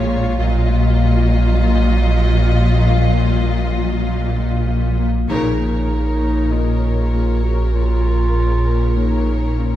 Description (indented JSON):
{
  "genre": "cinematic, suspense film score",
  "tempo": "98 BPM",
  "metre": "4/4",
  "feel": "straight",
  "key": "Bb minor",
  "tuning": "A4 = 439 Hz",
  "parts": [
    { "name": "clear symphonic violin section", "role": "melody", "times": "0.0-9.8 s", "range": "Db5 to Eb5", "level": "-30 LUFS", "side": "left 3 dB", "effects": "none" },
    { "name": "warm studio violin section", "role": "second line", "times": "0.0-9.8 s", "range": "F4 to Bb4", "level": "-27 LUFS", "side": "left 2 dB", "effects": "none" },
    { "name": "rich symphonic viola section", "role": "accompaniment", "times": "0.0-9.8 s", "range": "Db3 to Ab3", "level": "-29 LUFS", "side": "right 2 dB", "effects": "none" },
    { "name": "Celtic harp", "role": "riff", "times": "0.0-9.8 s", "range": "Bb2 to Bb3", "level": "-24 LUFS", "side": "left 8 dB", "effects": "none" },
    { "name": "rich symphonic cello section", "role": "bass", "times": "0.0-9.8 s", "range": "Bb2", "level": "-22 LUFS", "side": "equal", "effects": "none" },
    { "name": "rich symphonic double bass section", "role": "bass", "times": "0.0-9.8 s", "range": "Bb1", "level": "-25 LUFS", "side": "right 1 dB", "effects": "none" },
    { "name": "sub bass with octave", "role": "drone", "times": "0.0-9.8 s", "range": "Bb1", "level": "-18 LUFS", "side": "right 1 dB", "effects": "none" },
    { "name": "concert harp", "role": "texture", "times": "0.0-9.8 s", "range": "F4 to F5", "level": "-32 LUFS", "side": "left 5 dB", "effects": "none" },
    { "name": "warm clarinet", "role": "second line", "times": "5.3-9.8 s", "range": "Db4 to Gb4", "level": "-23 LUFS", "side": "right 1 dB", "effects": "none" }
  ],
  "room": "wet church reverb, RT60 2.8 s",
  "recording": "recorded in a church or concert hall",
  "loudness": "-14 LUFS",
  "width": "side -12 dB against mid",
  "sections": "0.0-5.3 A section; 5.3-9.8 B section",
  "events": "band accent 5.3-5.9",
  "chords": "0.4 Ebmadd9/Bb; 5.3 Bbm"
}